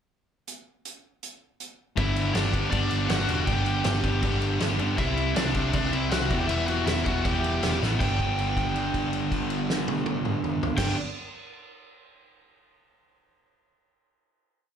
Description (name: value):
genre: punk rock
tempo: 159 BPM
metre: 4/4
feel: straight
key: G major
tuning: A4 = 441 Hz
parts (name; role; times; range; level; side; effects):
- loose indie drum kit; drums; 0.5-10.9 s; crash cymbal, hi-hat, kick drum, snare drum, toms; -30 LUFS; equal; none
- cranked stack guitar; melody; 2.0-10.9 s; D4 to G5; -31 LUFS; equal; overdrive
- distorted electric guitar; riff; 2.0-11.0 s; G2 to G4; -30 LUFS; left 11 dB; distortion, slapback echo
- sludgy distorted guitar; riff; 2.0-11.0 s; G2 to E4; -30 LUFS; right 10 dB; overdrive, slapback echo
- hollow-body short-scale picked electric bass; bass; 2.0-10.9 s; E1 to G2; -29 LUFS; equal; none
room: little or no reverb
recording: live gig heard through the venue's PA, club reverb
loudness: -23 LUFS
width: side -8 dB against mid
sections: 0.5-2.0 pickup bar; 2.0-8.0 riff; 8.0-11.0 final chord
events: drum fill 7.8; held note 8.0-10.8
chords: 0.5 N.C.; 2.0 G; 5.0 C; 6.3 Em; 8.0 G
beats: | 0.47 0.85 1.22 1.60 | 1.97 2.35 2.72 3.10 | 3.48 3.85 4.23 4.61 | 4.99 5.36 5.74 6.12 | 6.50 6.87 7.25 7.63 | 8.00 8.38 8.76 9.13 | 9.51 9.88 10.26 10.63